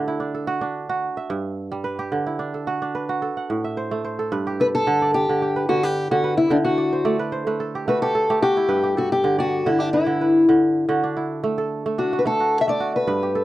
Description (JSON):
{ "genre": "west african traditional", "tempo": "110 BPM", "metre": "4/4", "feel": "swing 53% on 16ths", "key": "G major", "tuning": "A4 = 439 Hz", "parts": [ { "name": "kora", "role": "arpeggios", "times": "0.0-13.4 s", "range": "G2 to G5", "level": "-23 LUFS", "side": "right 3 dB", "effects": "none" }, { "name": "fingerpicked steel-string acoustic guitar", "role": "melody", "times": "4.6-13.4 s", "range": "D4 to E5", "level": "-19 LUFS", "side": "left 2 dB", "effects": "none" } ], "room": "light reverb", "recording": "dry, close 1970s-style studio recording", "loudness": "-19 LUFS", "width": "side -15 dB against mid", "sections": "0.0-4.3 A section; 4.3-13.4 B section", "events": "steel-string acoustic guitar solo 4.3-13.4; kora fill 6.5-8.7", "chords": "0.0 D; 1.0 G; 2.1 D; 3.2 Am; 4.3 G; 6.5 D; 8.7 G; 10.9 D" }